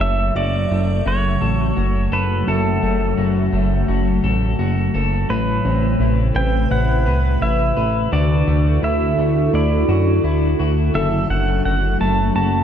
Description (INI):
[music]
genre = dream pop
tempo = 85 BPM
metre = 4/4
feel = straight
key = unclear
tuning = A4 = 444 Hz
[part]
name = pedal steel guitar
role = melody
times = 0.0-12.6 s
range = A4 to A5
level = -24 LUFS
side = right 2 dB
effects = digital delay
[part]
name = ethereal airy pad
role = sustained chords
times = 0.0-12.6 s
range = C3 to B4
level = -21 LUFS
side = equal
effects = ensemble chorus, built-in reverb
[part]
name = electric guitar at the edge of break-up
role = arpeggios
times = 0.0-12.6 s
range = F#2 to B4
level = -24 LUFS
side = left 3 dB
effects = lush chorus, digital delay
[part]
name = chorused synth bass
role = bass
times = 0.0-12.6 s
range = F#1 to F#2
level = -19 LUFS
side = equal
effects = none
[part]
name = shimmering bell with halo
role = texture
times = 0.4-1.6, 6.4-12.2 s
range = A4 to E5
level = -31 LUFS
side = left 1 dB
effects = ensemble chorus, digital delay
[sound]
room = light reverb, digital ambience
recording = dark, warm production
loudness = -16 LUFS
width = side -9 dB against mid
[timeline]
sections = 0.0-12.6 A section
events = none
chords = 0.0 F#m; 5.3 Amadd9; 8.1 Dadd9; 10.9 F#m